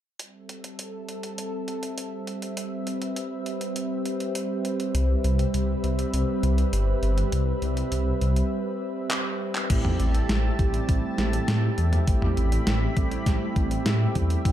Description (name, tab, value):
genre	synthwave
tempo	101 BPM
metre	4/4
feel	straight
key	A minor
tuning	A4 = 441 Hz
part	lush unison pad	sustained chords	0.2-14.5 s	G3 to B5	-30 LUFS	right 1 dB	chorus, sidechain pumping
part	clean 12-bit digital drum machine	drums	0.2-14.5 s	crash cymbal, handclaps, hi-hat, snare drum, toms	-30 LUFS	equal	overdrive
part	dark detuned saw bass	bass	4.9-14.5 s	G1 to A2	-24 LUFS	equal	tube saturation, sidechain pumping
part	mellow synth brass	stabs	9.7-14.5 s	G3 to G4	-30 LUFS	right 2 dB	chorus, tape echo
part	electronic kick drum	drums	9.7-14.5 s	none	-24 LUFS	equal	overdrive
room	light reverb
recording	dark, warm production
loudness	-23 LUFS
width	side -11 dB against mid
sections	0.2-9.7 A section; 9.7-14.5 B section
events	break 8.5-9.7; drum fill 9.1-9.7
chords	0.2 Am7; 4.9 Cmaj7; 9.7 Am7